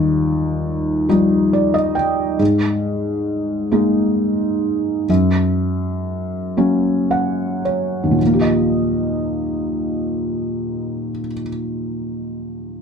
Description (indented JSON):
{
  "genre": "folk",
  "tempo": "34-46 BPM (dotted quarters)",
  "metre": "6/8",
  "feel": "straight",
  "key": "Eb major",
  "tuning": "A4 = 439 Hz",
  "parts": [
    { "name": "felt-muted upright piano", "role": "accompaniment", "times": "0.0-12.8 s", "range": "Eb2 to G5", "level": "-17 LUFS", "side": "equal", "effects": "none" }
  ],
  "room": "moderate studio ambience, RT60 0.5 s",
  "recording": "none",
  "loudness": "-17 LUFS",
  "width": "side -6 dB against mid",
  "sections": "0.0-8.2 A section; 8.2-11.7 B section",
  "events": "slowing down 2.4-8.2",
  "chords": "0.0 Ebadd9; 2.4 Absus2; 5.1 Gb; 8.2 Ebadd9",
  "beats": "1.10 | 2.40 3.72 | 5.09 6.57 | 8.21 9.93"
}